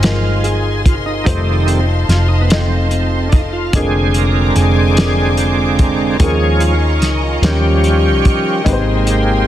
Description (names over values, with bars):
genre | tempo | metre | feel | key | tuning
slow gospel | 49 BPM (dotted quarters) | 6/8 | straight | Ab major | A4 = 440 Hz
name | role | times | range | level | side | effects
dark upright piano | accompaniment | 0.0-9.5 s | C3 to Eb5 | -22 LUFS | left 4 dB | none
bright tonewheel organ | sustained chords | 0.0-9.5 s | D3 to Bb4 | -17 LUFS | right 2 dB | slow rotary speaker, overdrive, chorus vibrato
rich studio string section | sustained chords | 0.0-9.5 s | Eb5 to D6 | -24 LUFS | left 2 dB | none
hollow-body short-scale fingered electric bass | bass | 0.0-9.4 s | F1 to Eb2 | -15 LUFS | equal | none
warm soul drum kit | drums | 0.0-9.3 s | hi-hat, kick drum, snare drum | -16 LUFS | equal | none
room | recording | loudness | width
light reverb, small room ambience | dense, heavily limited modern master | -12 LUFS | side -12 dB against mid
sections
0.0-9.5 A section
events
tonewheel organ solo 0.0-9.5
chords
0.0 Ab6; 1.3 F7; 3.7 Bb7/F; 6.2 Eb7sus4; 7.4 Eb7; 8.7 Abmaj7